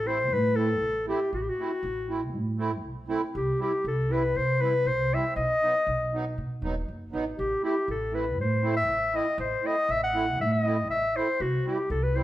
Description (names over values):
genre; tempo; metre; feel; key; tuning
klezmer; 119 BPM; 4/4; straight; A dorian sharp4; A4 = 440 Hz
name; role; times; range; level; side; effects
clear clarinet; melody; 0.0-12.2 s; F#4 to F#5; -26 LUFS; left 1 dB; none
upright bass; bass; 0.0-12.2 s; D#1 to C3; -30 LUFS; right 1 dB; none
accordion; accompaniment; 0.1-12.2 s; F#3 to E4; -33 LUFS; right 3 dB; light tremolo tuning
room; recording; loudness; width
wet stone room reverb, RT60 1.2 s; band playing live in one room; -25 LUFS; side -14 dB against mid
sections
0.0-12.2 A section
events
none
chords
0.0 Am; 3.3 C; 5.4 B; 7.4 Am; 11.4 C